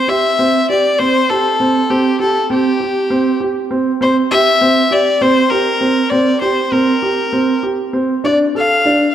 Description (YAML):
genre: contemporary instrumental, contemporary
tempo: 198 BPM (eighths)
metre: 7/8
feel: straight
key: unclear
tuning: A4 = 438 Hz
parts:
  - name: clear fiddle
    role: melody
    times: 0.0-9.1 s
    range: G4 to F5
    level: -15 LUFS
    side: left 3 dB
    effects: none
  - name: dark concert grand piano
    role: arpeggios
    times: 0.1-9.0 s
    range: C4 to A4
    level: -15 LUFS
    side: right 2 dB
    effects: none
room: moderate concert hall reverb, RT60 2.0 s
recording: none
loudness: -12 LUFS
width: side -10 dB against mid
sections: 0.0-9.1 A section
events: none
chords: 0.0 C5; 8.2 Bbmaj7/D (rootless)